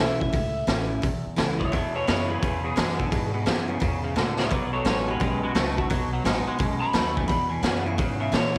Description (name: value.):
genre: rockabilly.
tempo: 172 BPM.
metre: 4/4.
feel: swing 64% on 8ths.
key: E major.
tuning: A4 = 440 Hz.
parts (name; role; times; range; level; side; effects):
electric guitar through a small old amp; melody; 0.0-8.6 s; E4 to B5; -33 LUFS; equal; spring reverb, tape echo.
picked steel-string acoustic guitar; accompaniment; 0.0-8.6 s; E2 to F#4; -33 LUFS; equal; none.
upright bass; bass; 0.0-8.6 s; A1 to A#2; -34 LUFS; equal; none.
raw garage drum kit; drums; 0.2-8.6 s; hi-hat, kick drum, snare drum; -29 LUFS; equal; none.
twangy electric guitar; riff; 1.7-8.6 s; E2 to A3; -32 LUFS; equal; analog chorus.
room: light reverb.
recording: none.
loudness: -25 LUFS.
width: mono.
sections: 0.0-8.6 A section.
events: clean electric guitar solo 0.0-8.6; drum fill 4.2-4.5.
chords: 0.0 A; 1.7 E; 4.5 B; 7.3 E.